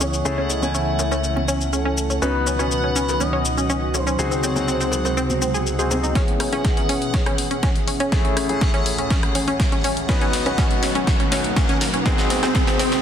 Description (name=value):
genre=progressive house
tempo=122 BPM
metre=4/4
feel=straight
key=C# minor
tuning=A4 = 440 Hz
part: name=expressive synth lead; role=melody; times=0.0-5.9 s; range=A4 to E5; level=-27 LUFS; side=left 1 dB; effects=lush chorus, dub echo
part: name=airy breathy pad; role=sustained chords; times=0.0-13.0 s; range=C#2 to G#5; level=-29 LUFS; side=right 1 dB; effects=chorus, sidechain pumping
part: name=wide unison pluck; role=arpeggios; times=0.0-12.9 s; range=B#2 to G#4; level=-25 LUFS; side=equal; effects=sidechain pumping, dub echo
part: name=warm concert grand piano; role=stabs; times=0.0-13.0 s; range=A3 to G#5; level=-27 LUFS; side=left 2 dB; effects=sidechain pumping, low-pass filter, dub echo
part: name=fat analog bass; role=bass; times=0.0-6.1 s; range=C#2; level=-26 LUFS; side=equal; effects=tube saturation, sidechain pumping
part: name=big-room dance drum kit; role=drums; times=0.0-13.0 s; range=hi-hat, rim click, shaker, snare drum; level=-27 LUFS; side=left 2 dB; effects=sidechain pumping on perc, high-pass filter on perc, studio reverb, high-pass filter on snare, sidechain pumping on hats, high-pass filter on hats
part: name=bongos, congas and cowbell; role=percussion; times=0.0-6.0 s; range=none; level=-33 LUFS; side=left 2 dB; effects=none
part: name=backwards swelling texture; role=texture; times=0.0-13.0 s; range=F#5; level=-33 LUFS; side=right 2 dB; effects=built-in reverb, sidechain pumping
part: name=electronic kick drum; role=drums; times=6.2-12.6 s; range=none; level=-21 LUFS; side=equal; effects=overdrive, studio reverb
part: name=riser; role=sound effects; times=7.9-13.0 s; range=none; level=-29 LUFS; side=equal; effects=none
room=light reverb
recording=dense, heavily limited modern master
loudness=-18 LUFS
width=side -8 dB against mid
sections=0.0-6.2 A section; 6.2-13.0 B section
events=filter sweep on synth pluck 0.0-6.2; filter sweep on analog synth pad 0.0-6.2; build-up 6.2-13.0; drum fill 6.2-13.0; filter sweep on grand piano 6.2-13.0; riser 7.9-13.0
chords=0.3 Amaj7/C#; 2.2 B/C#; 4.2 G#7/C#; 6.2 C#m7; 8.1 Amaj7/C#; 10.1 B/C#; 12.1 G#7/C#